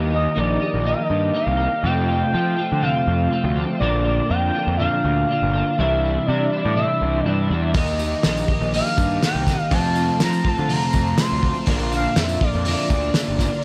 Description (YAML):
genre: psychedelic rock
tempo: 122 BPM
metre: 4/4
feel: straight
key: unclear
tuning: A4 = 438 Hz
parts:
  - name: bright tonewheel organ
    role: sustained chords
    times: 0.0-13.6 s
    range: Eb4 to C6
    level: -38 LUFS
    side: equal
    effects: none
  - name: twelve-string electric guitar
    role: riff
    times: 0.0-13.6 s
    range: F2 to G4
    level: -26 LUFS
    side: equal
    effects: flanger, dub echo
  - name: fuzz picked electric bass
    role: bass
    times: 0.0-13.5 s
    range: G1 to F3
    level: -26 LUFS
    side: equal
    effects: overdrive
  - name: expressive synth lead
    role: melody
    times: 0.1-13.6 s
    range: D5 to C6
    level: -26 LUFS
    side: equal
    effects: chorus, dub echo
  - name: cloth-damped thuddy drum kit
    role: drums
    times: 7.7-13.5 s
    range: hi-hat, kick drum, snare drum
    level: -25 LUFS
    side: equal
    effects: none
  - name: tambourine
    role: percussion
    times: 7.8-13.6 s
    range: none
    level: -43 LUFS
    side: equal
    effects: none
room: light reverb, studio reverb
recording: echo-heavy mix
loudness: -20 LUFS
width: mono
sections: 0.0-13.6 A section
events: none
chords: 0.0 Eb; 1.8 F; 3.8 Bb; 5.8 Cadd9; 7.8 Eb; 9.7 F; 11.7 Bb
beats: 0.37 0.86 1.36 | 1.85 2.34 2.83 3.33 | 3.82 4.31 4.80 5.29 | 5.79 6.28 6.77 7.26 | 7.75 8.24 8.74 9.23 | 9.72 10.21 10.70 11.19 | 11.68 12.18 12.67 13.16